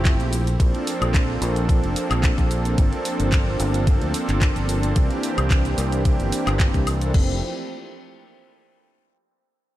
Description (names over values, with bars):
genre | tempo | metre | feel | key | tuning
nu-disco, nu disco | 110 BPM | 4/4 | swing 53% on 16ths | F major | A4 = 441 Hz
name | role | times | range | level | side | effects
warm analog pad | accompaniment | 0.0-7.4 s | E3 to A4 | -25 LUFS | right 1 dB | chorus, dub echo
fingered electric bass | bass | 0.0-7.4 s | F1 to D2 | -23 LUFS | equal | sidechain pumping
electronic kick drum | drums | 0.1-7.3 s | none | -19 LUFS | equal | studio reverb
pop drum kit | drums | 0.1-7.3 s | cabasa, crash cymbal, handclaps, hi-hat, ride cymbal, woodblock | -30 LUFS | left 1 dB | studio reverb
room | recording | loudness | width
little or no reverb | dark, warm production | -18 LUFS | side -14 dB against mid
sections
0.0-7.1 A section; 7.1-9.3 B section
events
drop 0.0-7.1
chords
0.3 Bbmaj7; 2.8 Gm11; 5.0 C9; 7.1 Fmaj7